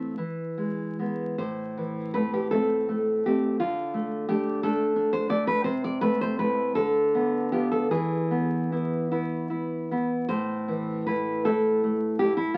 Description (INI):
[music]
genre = romantic piece for solo classical guitar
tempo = 48-60 BPM (dotted quarters)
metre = 6/8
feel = rubato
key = A minor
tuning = A4 = 438 Hz
[part]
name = nylon-string guitar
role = solo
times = 0.0-12.6 s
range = A2 to D5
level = -27 LUFS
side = equal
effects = none
[sound]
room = moderate studio ambience, RT60 0.5 s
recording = very old 78 rpm record, vinyl crackle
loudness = -27 LUFS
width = mono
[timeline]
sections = 0.0-1.4 A section; 1.4-12.6 A section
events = none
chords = 0.2 E; 1.4 Am; 3.6 Dm; 5.7 Am/C; 6.8 Bm7b5/D; 7.9 E; 10.3 Am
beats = 0.18 | 1.39 2.51 | 3.61 4.63 | 5.66 6.76 | 7.91 9.11 | 10.29 11.45 | 12.53